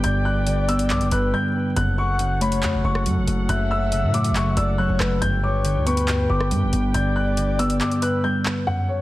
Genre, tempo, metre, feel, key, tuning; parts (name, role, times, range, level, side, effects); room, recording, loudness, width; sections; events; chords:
hip hop, drill; 139 BPM; 4/4; half-time; A4 = 440 Hz
warm upright piano; melody; 0.0-9.0 s; C#5 to G6; -27 LUFS; left 2 dB
breathy flute-like synth lead; second line; 0.0-8.2 s; B4 to F#5; -28 LUFS; left 3 dB; chorus, digital delay
muted felt-like synth keys; accompaniment; 0.0-9.0 s; F#2 to B3; -23 LUFS; equal; chorus
mellow brass ensemble; sustained chords; 0.0-9.0 s; F#2 to G5; -32 LUFS; right 1 dB
distorted 808-style bass; bass; 0.0-7.8 s; F#1 to A2; -24 LUFS; equal; distortion
drill drum kit; drums; 0.0-8.6 s; handclaps, hi-hat, rim click; -29 LUFS; equal
little or no reverb; dense, heavily limited modern master, vinyl crackle; -19 LUFS; side -16 dB against mid
0.0-8.7 A section
break 1.3-1.8; kick muted 7.8-8.7
0.0 G; 1.8 F#m; 5.2 G